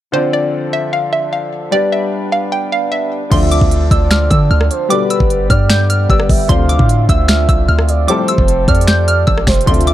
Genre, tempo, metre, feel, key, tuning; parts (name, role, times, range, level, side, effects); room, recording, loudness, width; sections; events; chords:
hip hop, trap; 151 BPM; 4/4; half-time; D dorian; A4 = 440 Hz
hollow square pluck; melody; 0.1-9.9 s; C5 to G6; -19 LUFS; right 1 dB; chorus
bright concert grand piano; accompaniment; 0.1-9.9 s; D3 to D5; -21 LUFS; left 5 dB
mellow accordion; sustained chords; 0.1-9.9 s; D3 to B4; -24 LUFS; equal
gliding portamento lead; second line; 3.3-9.9 s; B4 to F5; -19 LUFS; right 4 dB; chorus, digital delay
warm brass ensemble; stabs; 3.3-9.9 s; A2 to G3; -21 LUFS; left 4 dB
warm 808-style bass; bass; 3.3-9.9 s; F1 to D3; -14 LUFS; equal
trap drum kit; drums; 3.3-9.9 s; crash cymbal, finger snaps, hi-hat, kick drum, rim click, snare drum; -14 LUFS; equal; overdrive
digital ambience; dark, warm production; -11 LUFS; side -13 dB against mid
0.1-3.3 A section; 3.3-9.9 B section
0.1 Dm7; 1.7 G; 3.3 Dm7; 4.9 G; 6.5 Dm7; 8.1 Fadd9